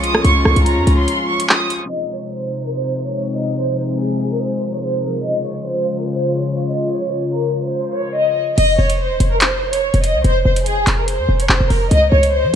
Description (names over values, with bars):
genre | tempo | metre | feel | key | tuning
hip hop, drill | 144 BPM | 4/4 | half-time | F minor | A4 = 440 Hz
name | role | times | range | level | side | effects
warm studio violin section | melody | 0.0-12.6 s | Ab4 to Eb6 | -19 LUFS | equal | digital delay
warm studio string section | sustained chords | 0.0-8.5 s | C3 to F4 | -21 LUFS | left 2 dB | none
short 808-style bass | bass | 0.0-1.1, 8.6-12.5 s | Eb1 to F3 | -16 LUFS | equal | none
drill drum kit | drums | 0.0-1.8, 8.6-12.3 s | crash cymbal, handclaps, hi-hat, rim click | -18 LUFS | equal | vintage 12-bit sampler grit
room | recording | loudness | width
moderate recital hall reverb, RT60 1.7 s | dark, warm production, low-pass filter | -15 LUFS | side -8 dB against mid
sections
0.0-1.9 A section; 1.9-8.6 B section; 8.6-12.6 C section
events
break 1.1-1.9; filter sweep 1.9-8.6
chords
0.0 Db; 1.9 Fm7; 5.2 Db; 8.6 F5; 11.9 Db